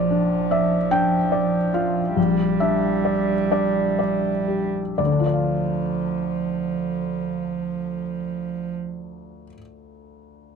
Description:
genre	neoclassical piano and strings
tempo	40-51 BPM (dotted quarters)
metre	6/8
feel	rubato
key	D minor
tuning	A4 = 439 Hz
part	warm cello	second line	0.0-8.7 s	F3 to G3	-24 LUFS	right 7 dB	none
part	felt-muted upright piano	accompaniment	0.0-10.6 s	Bb1 to G5	-22 LUFS	left 3 dB	none
room	light reverb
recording	close, detailed microphones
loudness	-20 LUFS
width	side -6 dB against mid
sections	0.0-5.0 A section; 5.0-8.0 B section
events	slowing down 0.0-5.0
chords	0.0 Bb; 5.0 Dm

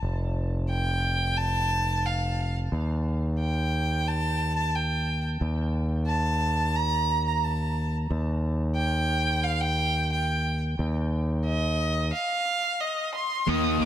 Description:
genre	post-rock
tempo	89 BPM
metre	4/4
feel	straight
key	unclear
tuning	A4 = 443 Hz
part	growling fingered electric bass	bass	0.0-13.9 s	F1 to Eb2	-26 LUFS	equal	overdrive
part	clear violin	melody	0.7-13.9 s	Eb5 to Eb6	-28 LUFS	right 1 dB	tape echo
part	thick fuzz guitar	riff	13.5-13.9 s	Eb3 to Eb4	-24 LUFS	equal	distortion
room	light reverb, small room ambience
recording	none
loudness	-24 LUFS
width	side -11 dB against mid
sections	0.0-13.5 A section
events	none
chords	0.0 F5; 2.7 Eb

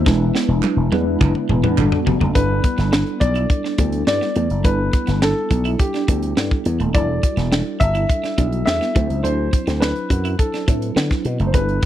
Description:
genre	polished 1980s jazz-funk pop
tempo	104 BPM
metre	4/4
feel	straight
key	G major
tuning	A4 = 440 Hz
part	warm concert grand piano	melody	0.0-11.9 s	G4 to E5	-24 LUFS	left 1 dB	slapback echo
part	mellow tine electric piano	accompaniment	0.0-11.9 s	F#3 to C5	-23 LUFS	left 1 dB	medium stereo tremolo, ensemble chorus
part	slap bass with an envelope filter	bass	0.0-11.8 s	Eb1 to D3	-20 LUFS	equal	none
part	electric guitar at the edge of break-up	riff	0.1-11.9 s	G3 to E4	-28 LUFS	right 7 dB	lush chorus
part	tight funk drum kit	drums	0.1-11.9 s	hi-hat, kick drum, snare drum, toms	-19 LUFS	equal	none
part	group handclap	percussion	0.6-1.9 s	none	-31 LUFS	right 14 dB	none
room	small room reverb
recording	dry, close 1970s-style studio recording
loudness	-16 LUFS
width	side -12 dB against mid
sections	0.0-2.4 A section; 2.4-11.9 B section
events	drum fill 0.1-2.4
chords	0.1 E7; 1.8 Gmaj9; 2.4 G69; 6.9 Em11; 9.0 D13

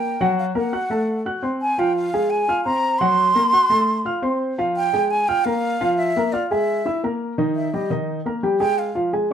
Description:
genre	jazz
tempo	171 BPM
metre	4/4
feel	straight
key	unclear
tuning	A4 = 441 Hz
part	breathy concert flute	melody	0.0-9.0 s	D5 to C6	-20 LUFS	right 2 dB	none
part	warm upright piano	accompaniment	0.0-9.3 s	Eb3 to Gb6	-21 LUFS	left 1 dB	none
room	moderate studio reverb, RT60 0.6 s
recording	dark, warm production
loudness	-18 LUFS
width	side -8 dB against mid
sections	0.0-7.4 A section; 7.4-9.3 B section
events	flute solo 7.4-9.3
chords	0.4 Gbm; 1.1 Am6; 1.8 Fmadd11; 3.2 F#dim; 3.9 F; 4.6 Bb7(no3)/F; 6.7 Absus2; 7.4 Ebadd11; 8.8 Db (rootless)

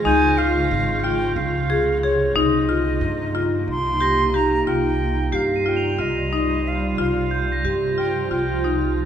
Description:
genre	contemporary instrumental, chamber music in an uneven meter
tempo	182 BPM (eighths)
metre	7/8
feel	straight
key	unclear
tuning	A4 = 440 Hz
part	silver concert flute	melody	0.0-8.9 s	Db5 to C6	-25 LUFS	right 1 dB	none
part	granular cloud pad	sustained chords	0.0-9.1 s	C3 to F4	-27 LUFS	right 2 dB	built-in reverb
part	crotales	texture	0.0-9.1 s	G6 to F7	-30 LUFS	right 4 dB	none
part	marimba with hard mallets	arpeggios	0.1-9.0 s	Eb4 to Ab4	-22 LUFS	left 3 dB	none
part	upright bass	bass	0.1-9.1 s	Ab1 to G2	-26 LUFS	right 2 dB	none
room	wet recital hall reverb, RT60 1.4 s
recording	minimal, uncompressed stereo recording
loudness	-18 LUFS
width	side -9 dB against mid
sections	0.0-4.7 A section; 4.7-9.1 B section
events	none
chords	0.1 Dbmaj7; 2.4 Cm7

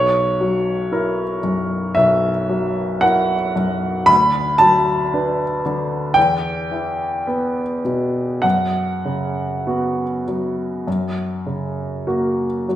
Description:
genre	classical, romantic nocturne for solo piano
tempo	47-59 BPM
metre	4/4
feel	rubato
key	unclear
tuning	A4 = 440 Hz
part	clear grand piano	solo	0.0-12.8 s	B1 to B5	-17 LUFS	equal	none
room	wet stone room reverb, RT60 1.2 s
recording	none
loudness	-17 LUFS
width	side -12 dB against mid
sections	0.0-12.8 A section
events	none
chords	0.0 F#7/B; 4.1 Bm/D; 6.2 Em; 8.4 F#sus4; 10.9 F#

